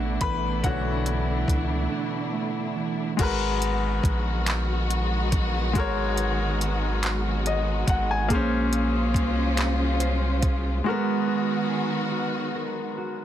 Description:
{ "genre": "slow six-eight R&B", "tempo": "47 BPM (dotted quarters)", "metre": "6/8", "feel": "straight", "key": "unclear", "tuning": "A4 = 439 Hz", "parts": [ { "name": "mellow electric guitar", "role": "second line", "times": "0.0-3.3, 8.3-13.2 s", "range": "B2 to B#4", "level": "-30 LUFS", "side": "right 6 dB", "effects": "spring reverb, slapback echo" }, { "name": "clear baby grand piano", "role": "accompaniment", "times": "0.0-13.2 s", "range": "D3 to B5", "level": "-28 LUFS", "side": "left 4 dB", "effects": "none" }, { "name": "dark studio string section", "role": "sustained chords", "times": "0.0-13.2 s", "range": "D#3 to B#4", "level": "-30 LUFS", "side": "equal", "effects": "none" }, { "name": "round analog bass", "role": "bass", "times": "0.0-10.8 s", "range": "G#1 to C#2", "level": "-26 LUFS", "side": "equal", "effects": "none" }, { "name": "smooth R&B drum kit", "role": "drums", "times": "0.2-10.6 s", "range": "crash cymbal, handclaps, hi-hat, kick drum", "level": "-26 LUFS", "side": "equal", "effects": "soft clipping on snare" } ], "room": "light reverb", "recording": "dense, heavily limited modern master", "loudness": "-22 LUFS", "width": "side -11 dB against mid", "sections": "0.0-3.2 A section; 3.2-13.2 B section", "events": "grand piano solo 0.0-3.2; break 1.9-3.2, 10.9-13.2", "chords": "0.0 Bm11; 3.2 G#m9; 8.3 A#m9; 10.9 G#m9", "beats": "| 0.64 1.92 | 3.19 4.47 | 5.75 7.03 | 8.30 9.58 | 10.85 12.13" }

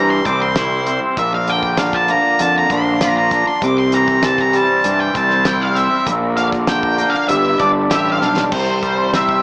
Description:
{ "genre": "psychedelic rock", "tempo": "98 BPM", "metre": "4/4", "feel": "straight", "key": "C mixolydian", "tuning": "A4 = 439 Hz", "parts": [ { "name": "octave-fuzz lead guitar", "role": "melody", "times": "0.0-9.4 s", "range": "C5 to D6", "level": "-20 LUFS", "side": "equal", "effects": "distortion, analog delay" }, { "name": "combo organ", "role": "sustained chords", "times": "0.0-9.4 s", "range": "E3 to D5", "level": "-28 LUFS", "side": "equal", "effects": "lush chorus" }, { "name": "twangy electric guitar", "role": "riff", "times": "0.0-9.4 s", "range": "G2 to G4", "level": "-21 LUFS", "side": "equal", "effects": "phaser" }, { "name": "fuzz picked electric bass", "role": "bass", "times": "0.0-9.4 s", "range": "G1 to G2", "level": "-24 LUFS", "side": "equal", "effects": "overdrive" }, { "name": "damped 70s drum kit", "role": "drums", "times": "0.3-9.4 s", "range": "crash cymbal, hi-hat, kick drum, snare drum", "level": "-26 LUFS", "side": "equal", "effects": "none" } ], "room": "little or no reverb", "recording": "small speaker sound", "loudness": "-16 LUFS", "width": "mono", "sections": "0.0-8.5 A section", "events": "lead electric guitar solo 0.0-8.5; drum fill 8.2-8.5", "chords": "0.0 C; 1.2 Bb; 3.6 C; 6.1 Bb; 7.3 G; 8.5 C", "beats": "0.56 | 1.17 1.78 2.40 3.01 | 3.62 4.23 4.84 5.45 | 6.07 6.68 7.29 7.90 | 8.52 9.13" }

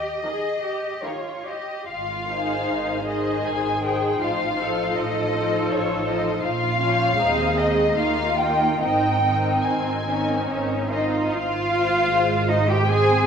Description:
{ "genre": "classical, slow romantic movement for string orchestra", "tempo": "70-82 BPM", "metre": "3/4", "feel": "rubato", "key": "Ab major", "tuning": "A4 = 438 Hz", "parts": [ { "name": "muted studio violin section", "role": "melody", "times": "0.0-13.2 s", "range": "C5 to Ab5", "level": "-25 LUFS", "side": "left 2 dB", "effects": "none" }, { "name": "muted studio cello section", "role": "bass", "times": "0.0-13.3 s", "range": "C4 to A4", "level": "-26 LUFS", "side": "right 2 dB", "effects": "none" }, { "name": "muted studio double bass section", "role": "bass", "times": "0.0-13.3 s", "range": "Ab1 to Eb2", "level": "-28 LUFS", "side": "right 3 dB", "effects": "none" }, { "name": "muted studio violin section", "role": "second line", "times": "0.2-13.3 s", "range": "Eb4 to Ab5", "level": "-27 LUFS", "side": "left 3 dB", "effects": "none" }, { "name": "muted studio viola section", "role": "accompaniment", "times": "0.2-13.3 s", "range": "Eb3 to Eb4", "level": "-27 LUFS", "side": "right 1 dB", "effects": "none" } ], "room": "wet scoring stage reverb, RT60 1.6 s", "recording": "minimal, uncompressed stereo recording", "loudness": "-20 LUFS", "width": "side -7 dB against mid", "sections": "0.0-11.3 A section; 11.3-13.3 A section", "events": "none", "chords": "0.0 Eb; 1.9 Ab; 4.2 F7/A; 6.4 Bbm; 7.2 Ab/Eb; 8.0 Eb; 8.8 Ab", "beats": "0.24 1.05 | 1.88 2.67 3.45 | 4.20 4.96 5.70 | 6.44 7.19 7.97 | 8.81 9.66 10.48 | 11.31 12.10 12.88" }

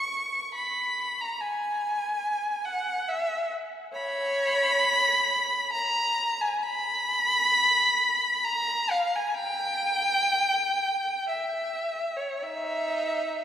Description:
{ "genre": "classical, free, expressive piece for unaccompanied violin", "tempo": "50-72 BPM", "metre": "3/4", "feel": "rubato", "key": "unclear", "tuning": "A4 = 442 Hz", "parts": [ { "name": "rich violin", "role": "solo", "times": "0.0-13.4 s", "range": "D#4 to C#6", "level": "-24 LUFS", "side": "equal", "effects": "none" } ], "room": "wet cathedral reverb, RT60 4.6 s", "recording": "heard from further back in the room", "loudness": "-24 LUFS", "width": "side -10 dB against mid", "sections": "0.0-13.4 A section", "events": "none", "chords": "none", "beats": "0.52 | 1.38 2.22 3.06 | 3.92 4.80 5.71 | 6.61 7.52 8.44 | 9.36 10.27 11.29 | 12.45" }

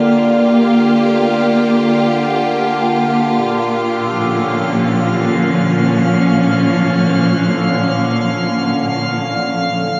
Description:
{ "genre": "ambient", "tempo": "free time", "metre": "none", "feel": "none", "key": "unclear", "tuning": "A4 = 440 Hz", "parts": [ { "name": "rich studio string section", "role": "sustained chords", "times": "0.0-9.9 s", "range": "Bb2 to G4", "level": "-16 LUFS", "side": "equal", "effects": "none" }, { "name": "overtone-sweeping drone", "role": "drone", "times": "0.0-10.0 s", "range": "D3", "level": "-22 LUFS", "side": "equal", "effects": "chorus, built-in reverb" }, { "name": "drifting glass-harmonics texture", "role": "texture", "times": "0.0-10.0 s", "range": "F5 to F6", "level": "-26 LUFS", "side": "equal", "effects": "chorus, built-in reverb" } ], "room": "wet cathedral reverb, RT60 5.9 s", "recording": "dark, warm production", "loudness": "-15 LUFS", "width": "mono", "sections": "0.0-10.0 A section", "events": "fade-in on synth texture 0.0-10.0", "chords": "0.0 Bb6/D; 3.4 Bbm", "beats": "free time" }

